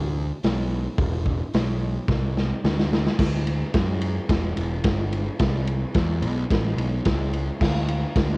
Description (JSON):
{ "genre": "garage rock duo or trio", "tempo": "109 BPM", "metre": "4/4", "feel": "straight", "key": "E minor", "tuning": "A4 = 440 Hz", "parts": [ { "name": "fuzz picked electric bass", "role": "bass", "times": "0.0-8.4 s", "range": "E1 to F#2", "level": "-24 LUFS", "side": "equal", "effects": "overdrive" }, { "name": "raw garage drum kit", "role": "drums", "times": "0.4-8.3 s", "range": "crash cymbal, hi-hat, kick drum, ride cymbal, snare drum", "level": "-23 LUFS", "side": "equal", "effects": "cassette tape" } ], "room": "little or no reverb", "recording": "home recording on cassette", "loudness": "-21 LUFS", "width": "side -27 dB against mid", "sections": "0.0-3.2 A section; 3.2-8.4 B section", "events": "drum fill 2.1-3.2", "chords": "none" }